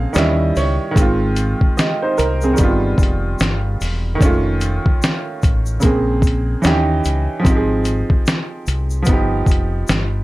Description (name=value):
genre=lo-fi hip hop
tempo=74 BPM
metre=4/4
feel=swing 61% on 16ths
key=Ab major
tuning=A4 = 442 Hz
part: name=clear upright piano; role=accompaniment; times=0.0-10.2 s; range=Db3 to F5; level=-19 LUFS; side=right 2 dB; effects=none
part: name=deep dub fingered electric bass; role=bass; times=0.0-10.2 s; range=Fb1 to Eb2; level=-19 LUFS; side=equal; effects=none
part: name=egg shaker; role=percussion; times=0.1-10.1 s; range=none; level=-35 LUFS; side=left 5 dB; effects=none
part: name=lo-fi sampler-style drum kit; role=drums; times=0.2-10.1 s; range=hi-hat, kick drum, snare drum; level=-16 LUFS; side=equal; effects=none
room=moderate small room reverb, RT60 0.6 s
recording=cassette tape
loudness=-14 LUFS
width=side -18 dB against mid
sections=0.0-10.2 A section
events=none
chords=0.2 Eb7b9; 1.0 Ab6; 2.6 Gaug7; 4.2 Faug7; 5.8 Bbm9; 6.6 Eb7b9; 7.4 Ab6; 9.1 Gaug7